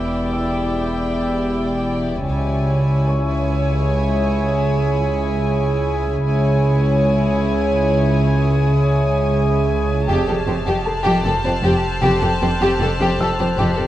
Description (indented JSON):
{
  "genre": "cinematic, suspense film score",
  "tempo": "77 BPM",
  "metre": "5/4",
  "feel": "straight",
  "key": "unclear",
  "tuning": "A4 = 440 Hz",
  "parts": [
    { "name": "warm chamber violin section", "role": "melody", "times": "0.0-13.9 s", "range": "G5 to A5", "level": "-28 LUFS", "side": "left 1 dB", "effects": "none" },
    { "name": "warm symphonic violin section", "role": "second line", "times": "0.0-13.8 s", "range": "E4 to D5", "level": "-23 LUFS", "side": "left 2 dB", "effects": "none" },
    { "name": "drifting glass-harmonics texture", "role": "sustained chords", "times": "0.0-13.9 s", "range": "G4 to G5", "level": "-25 LUFS", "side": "right 2 dB", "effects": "chorus, built-in reverb" },
    { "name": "dark symphonic double bass section", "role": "bass", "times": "0.0-13.7 s", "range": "E1 to C#2", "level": "-21 LUFS", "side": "right 1 dB", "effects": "none" },
    { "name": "warm symphonic cello section", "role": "bass", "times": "0.0-13.9 s", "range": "C#2 to F2", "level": "-23 LUFS", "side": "right 1 dB", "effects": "none" },
    { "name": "sub bass with octave", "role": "drone", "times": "0.0-13.9 s", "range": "E1 to C#2", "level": "-26 LUFS", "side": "equal", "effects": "none" },
    { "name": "dark baby grand piano", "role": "texture", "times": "0.0-13.9 s", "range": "A4 to E6", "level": "-31 LUFS", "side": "left 1 dB", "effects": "none" },
    { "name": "warm symphonic violin section", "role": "texture", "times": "10.1-13.9 s", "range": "F6 to C7", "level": "-35 LUFS", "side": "left 1 dB", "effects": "none" }
  ],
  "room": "wet recital hall reverb, RT60 1.4 s",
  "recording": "worn, warbling old tape, cassette tape, warbly pitch drift",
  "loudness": "-16 LUFS",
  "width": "side -13 dB against mid",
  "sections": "0.0-13.9 A section",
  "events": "none",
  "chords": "0.0 Em7; 2.3 C#m; 10.1 Fadd9"
}